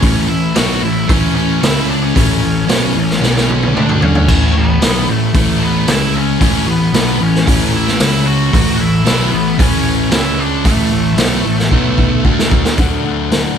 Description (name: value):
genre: quiet-loud alternative rock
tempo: 113 BPM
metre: 4/4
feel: straight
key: A major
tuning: A4 = 440 Hz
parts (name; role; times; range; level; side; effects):
- octave-fuzz lead guitar; melody; 0.0-12.2 s; A3 to F#5; -20 LUFS; left 1 dB; distortion, digital delay
- sludgy distorted guitar; riff; 0.0-12.8 s; A2 to D4; -18 LUFS; right 12 dB; overdrive
- thick fuzz guitar; riff; 0.0-13.6 s; A2 to D4; -18 LUFS; left 11 dB; distortion
- fuzz picked electric bass; bass; 0.0-13.4 s; A1 to D2; -20 LUFS; equal; overdrive
- raw garage drum kit; drums; 0.0-13.4 s; crash cymbal, hi-hat, kick drum, snare drum, toms; -15 LUFS; equal; none
- electric guitar through a small old amp; arpeggios; 12.8-13.6 s; D3 to F#4; -22 LUFS; right 1 dB; analog chorus, slapback echo, digital delay
room: light reverb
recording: none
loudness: -11 LUFS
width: side -8 dB against mid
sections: 0.0-12.8 A section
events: drum fill 3.2-4.3, 11.7-12.8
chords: 0.0 A; 1.6 C#5; 2.2 A; 3.2 B5; 3.8 D5; 4.3 A; 5.9 C#5; 6.4 A; 8.0 C#5; 8.5 A; 10.1 C#5; 10.7 A5; 11.7 B5; 12.3 D5; 12.8 D